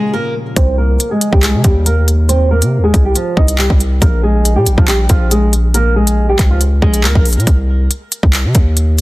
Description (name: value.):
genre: hip hop, drill.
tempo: 139 BPM.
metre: 4/4.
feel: half-time.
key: C phrygian.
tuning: A4 = 441 Hz.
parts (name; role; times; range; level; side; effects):
flamenco guitar; melody; 0.0-7.2 s; F3 to Eb5; -16 LUFS; equal; low-pass filter.
concert harp; accompaniment; 0.0-0.6 s; Db3 to Db4; -36 LUFS; left 3 dB; none.
airy breathy pad; sustained chords; 0.0-0.5 s; Bb2 to F4; -31 LUFS; equal; chorus.
distorted 808-style bass; bass; 0.6-9.0 s; Bb1 to C3; -13 LUFS; equal; distortion.
drill drum kit; drums; 0.6-9.0 s; handclaps, hi-hat, kick drum; -12 LUFS; equal; none.
room: little or no reverb.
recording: dense, heavily limited modern master.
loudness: -10 LUFS.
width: side -19 dB against mid.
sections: 0.6-9.0 A section.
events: filter sweep on nylon-string guitar 0.6-7.5.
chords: 0.0 Bbm; 0.6 Cm; 4.0 Bbm; 7.5 Cm.